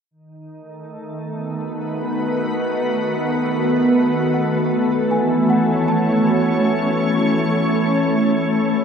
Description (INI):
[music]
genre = ambient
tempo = 78 BPM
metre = 3/4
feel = straight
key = B mixolydian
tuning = A4 = 440 Hz
[part]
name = soft additive organ-like pad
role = sustained chords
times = 1.1-8.8 s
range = D#3 to C#5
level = -17 LUFS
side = equal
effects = ensemble chorus, built-in reverb
[part]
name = celesta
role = arpeggios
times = 2.0-8.8 s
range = D#4 to A5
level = -29 LUFS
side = equal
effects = tape echo
[sound]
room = wet huge ambient reverb, RT60 7.7 s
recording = in a vast, echoing space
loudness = -16 LUFS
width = side -7 dB against mid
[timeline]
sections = 0.1-8.8 A section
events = fade-in on celesta 0.1-8.8; filter sweep on ambient pad 0.1-8.8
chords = 0.1 B7; 4.7 Amaj7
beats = | 0.11 0.88 1.65 | 2.42 3.19 3.95 | 4.72 5.49 6.26 | 7.03 7.80 8.57